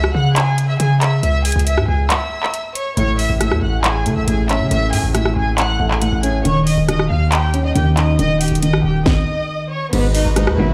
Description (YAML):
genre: hip hop, trap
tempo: 138 BPM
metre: 4/4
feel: half-time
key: unclear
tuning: A4 = 436 Hz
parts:
  - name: warm studio violin section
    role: melody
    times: 0.0-10.7 s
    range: B3 to F#6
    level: -24 LUFS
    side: equal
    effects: none
  - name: hard-hitting 808-style bass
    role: bass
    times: 0.0-10.7 s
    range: D#1 to C#3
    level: -20 LUFS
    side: equal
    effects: none
  - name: trap drum kit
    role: drums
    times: 0.0-10.6 s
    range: crash cymbal, handclaps, hi-hat, kick drum, rim click, snare drum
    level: -22 LUFS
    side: equal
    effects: none
  - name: felt-muted upright piano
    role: accompaniment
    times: 3.0-10.7 s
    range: G#2 to D#4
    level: -22 LUFS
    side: equal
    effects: none
  - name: warm symphonic string section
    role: sustained chords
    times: 9.9-10.7 s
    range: G#3 to B4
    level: -28 LUFS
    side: equal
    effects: none
  - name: warm studio string section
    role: stabs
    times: 10.6-10.7 s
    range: B2 to F#3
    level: -19 LUFS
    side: equal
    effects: none
room: little or no reverb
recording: played on a big sound system in a bare room, large studio reverb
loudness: -17 LUFS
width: mono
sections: 0.0-9.9 A section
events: break 0.0-3.0; stop 9.1-9.9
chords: 0.0 C#m; 3.0 Amaj7; 6.5 D#7; 9.9 G#m7